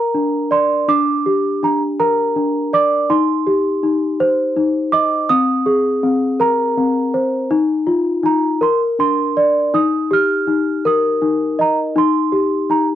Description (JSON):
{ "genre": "children's music, lullaby", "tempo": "54 BPM (dotted quarters)", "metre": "6/8", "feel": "straight", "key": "Eb major", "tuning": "A4 = 441 Hz", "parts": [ { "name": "worn celesta", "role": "solo", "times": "0.0-13.0 s", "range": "C4 to F6", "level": "-14 LUFS", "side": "equal", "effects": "none" } ], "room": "moderate small room reverb, RT60 0.6 s", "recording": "worn, warbling old tape, cassette tape, warbly pitch drift", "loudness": "-14 LUFS", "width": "side -11 dB against mid", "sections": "0.0-9.7 A section; 9.7-13.0 B section", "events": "none", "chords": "0.0 Bb; 0.9 Gm; 3.1 Cm; 5.3 Abadd9; 7.5 Bbsus4; 8.6 Bb; 9.7 Eb; 12.0 Cm/Eb" }